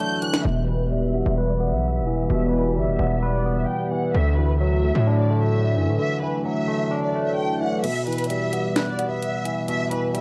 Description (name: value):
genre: hip hop, trap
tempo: 130 BPM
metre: 4/4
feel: half-time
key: E minor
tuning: A4 = 436 Hz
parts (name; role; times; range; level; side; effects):
- warm studio violin section; melody; 0.0-10.2 s; B4 to G6; -31 LUFS; equal; low-pass filter, tape echo
- barky tine electric piano; accompaniment; 0.0-10.2 s; B2 to B4; -27 LUFS; equal; overdrive, phaser, low-pass filter
- hollow soft pad; sustained chords; 0.0-7.8 s; D3 to F#5; -32 LUFS; equal; chorus, low-pass filter
- trap drum kit; drums; 0.2-0.4, 7.8-10.2 s; crash cymbal, finger snaps, hi-hat, snare drum; -30 LUFS; equal; none
- distorted 808-style bass; bass; 0.5-6.0 s; E1 to A2; -24 LUFS; equal; distortion
room: digital ambience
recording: dark, warm production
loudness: -23 LUFS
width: mono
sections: 0.5-7.8 A section; 7.8-10.2 B section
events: break 0.0-0.5, 6.0-7.8; filter sweep 0.5-7.8; kick muted 7.8-10.2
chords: 0.5 Em; 4.1 Dadd9; 7.8 Em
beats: | 0.45 0.91 1.38 1.84 | 2.30 2.76 3.22 3.68 | 4.14 4.61 5.07 5.53 | 5.99 6.45 6.91 7.38 | 7.84 8.30 8.76 9.22 | 9.68 10.14